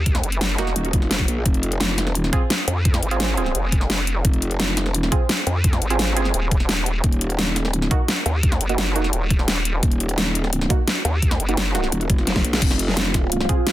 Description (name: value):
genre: dark technical drum and bass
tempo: 172 BPM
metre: 4/4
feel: straight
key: F phrygian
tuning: A4 = 442 Hz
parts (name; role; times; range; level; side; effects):
- vowel-sweep wobble bass; bass; 0.0-11.9 s; Eb1 to F2; -22 LUFS; equal; chorus
- dubstep drum kit; drums; 0.1-13.7 s; crash cymbal, hi-hat, snare drum; -23 LUFS; left 1 dB; none
- electronic kick drum; drums; 0.1-13.6 s; none; -19 LUFS; equal; none
- filtered dub chord stab; stabs; 0.6-13.6 s; Bb3 to Ab4; -28 LUFS; right 5 dB; chorus, tape echo
- growl bass; bass; 0.8-13.5 s; Eb1 to Bb1; -22 LUFS; equal; chorus, overdrive
- deep dark ambient pad; sustained chords; 13.1-13.7 s; F4 to F5; -27 LUFS; right 4 dB; chorus, built-in reverb, vintage 12-bit sampler grit, sidechain pumping
room: digital ambience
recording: dense, heavily limited modern master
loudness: -18 LUFS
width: side -14 dB against mid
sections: 0.0-12.6 A section; 12.6-13.7 A section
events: drop 0.0-12.6, 12.6-13.7; drum fill 12.3-12.6; band accent 12.5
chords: 0.0 Ebm; 1.5 Fm; 7.0 Ebm; 12.6 Fm